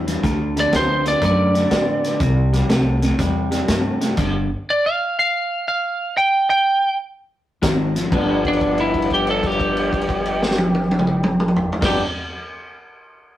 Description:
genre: electric blues shuffle.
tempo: 122 BPM.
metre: 4/4.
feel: swing 67% on 8ths.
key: G mixolydian.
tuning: A4 = 439 Hz.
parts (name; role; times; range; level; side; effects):
electric guitar through a small old amp; riff; 0.0-4.5, 7.6-12.0 s; G2 to D4; -22 LUFS; left 1 dB; none.
upright bass; bass; 0.0-4.5, 7.6-12.0 s; G1 to A2; -23 LUFS; equal; none.
vintage drum kit; drums; 0.1-4.3, 7.6-11.9 s; crash cymbal, hi-hat, kick drum, snare drum, toms; -22 LUFS; equal; none.
lightly driven lead guitar; melody; 0.6-12.0 s; D4 to G5; -19 LUFS; right 1 dB; none.
room: moderate studio reverb, RT60 0.6 s.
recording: rough rehearsal-room recording, tube saturation.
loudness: -16 LUFS.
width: side -13 dB against mid.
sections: 0.0-8.1 A section; 8.1-12.1 B section.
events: stop 4.2-7.6; held note 8.1-11.8.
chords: 0.2 D; 2.2 C; 4.2 G5; 7.6 Ab5; 8.1 G7.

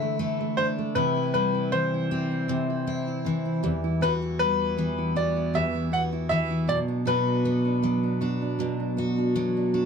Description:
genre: pop.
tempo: 78 BPM.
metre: 4/4.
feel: swing 55% on 16ths.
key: unclear.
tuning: A4 = 437 Hz.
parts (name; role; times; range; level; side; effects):
bright upright piano; melody; 0.0-8.6 s; B4 to F#5; -27 LUFS; left 2 dB; none.
picked steel-string acoustic guitar; accompaniment; 0.0-9.9 s; E2 to F#4; -26 LUFS; left 1 dB; none.
fingerpicked steel-string acoustic guitar; arpeggios; 0.0-9.9 s; E3 to G4; -32 LUFS; right 10 dB; none.
room: moderate studio reverb, RT60 0.5 s.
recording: none.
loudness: -23 LUFS.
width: side -6 dB against mid.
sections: 0.0-9.9 A section.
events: none.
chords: 0.0 Dsus2; 1.0 C; 3.6 Emadd9; 6.7 Bm.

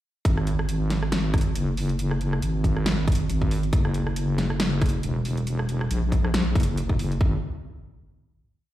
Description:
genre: deep dubstep.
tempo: 138 BPM.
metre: 4/4.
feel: swing 56% on 16ths, half-time.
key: unclear.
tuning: A4 = 440 Hz.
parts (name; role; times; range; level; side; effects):
wobble bass; bass; 0.3-7.4 s; E1 to A#1; -24 LUFS; equal; chorus.
dubstep drum kit; drums; 0.3-7.2 s; hi-hat, rim click, snare drum; -30 LUFS; equal; small room ambience.
electronic kick drum; drums; 0.3-7.3 s; none; -24 LUFS; equal; small room ambience.
room: little or no reverb.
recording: played on a big sound system in a bare room, large studio reverb.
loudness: -22 LUFS.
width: side -14 dB against mid.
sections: 0.3-7.2 drop; 7.2-8.7 final note.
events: drop 0.3-7.2.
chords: none.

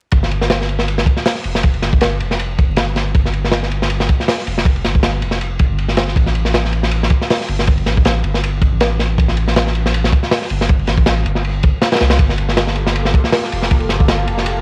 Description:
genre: drum and bass, jungle.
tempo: 159 BPM.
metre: 4/4.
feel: swing 54% on 16ths.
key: unclear.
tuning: A4 = 442 Hz.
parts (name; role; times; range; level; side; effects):
soft dub sub bass; bass; 0.1-14.6 s; F1 to C2; -21 LUFS; equal; tube saturation.
crunchy breakbeat drum kit; drums; 0.1-14.6 s; hi-hat, kick drum, ride cymbal, snare drum; -17 LUFS; equal; cassette tape.
lush unison pad; sustained chords; 12.2-14.6 s; Bb3 to A4; -26 LUFS; equal; chorus, phaser.
room: light reverb, small room ambience.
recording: home recording on cassette, vinyl crackle.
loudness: -16 LUFS.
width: mono.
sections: 0.1-14.6 A section.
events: none.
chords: 0.1 Fsus2; 6.2 Gsus2; 12.2 Gm9.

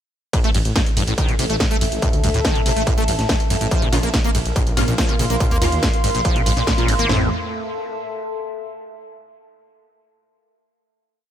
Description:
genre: driving peak-time techno.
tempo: 142 BPM.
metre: 4/4.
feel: straight.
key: unclear.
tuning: A4 = 439 Hz.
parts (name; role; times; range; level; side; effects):
acid bass, saw; riff; 0.3-7.3 s; G2 to Bb3; -24 LUFS; equal; ensemble chorus, sidechain pumping, dub echo.
techno drum kit; drums; 0.3-7.2 s; kick drum, snare drum, toms; -20 LUFS; equal; distortion.
techno drum kit; drums; 0.3-7.1 s; hi-hat, ride cymbal, snare drum; -24 LUFS; right 1 dB; none.
warbly tape-like pad; texture; 1.1-8.7 s; A4 to C6; -26 LUFS; equal; chorus, built-in reverb, sidechain pumping.
detuned saw bass; bass; 0.4-7.3 s; G#1 to D#2; -23 LUFS; equal; sidechain pumping.
rave stab; stabs; 3.9-7.3 s; A3 to F4; -28 LUFS; equal; chorus, built-in reverb, sidechain pumping, dub echo.
room: light reverb.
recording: none.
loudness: -16 LUFS.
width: side -10 dB against mid.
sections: 0.3-7.1 drop; 7.1-8.8 final chord.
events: drop 0.3-7.1; band accent 6.7.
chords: 0.3 A5; 3.7 Bbm; 7.1 Am.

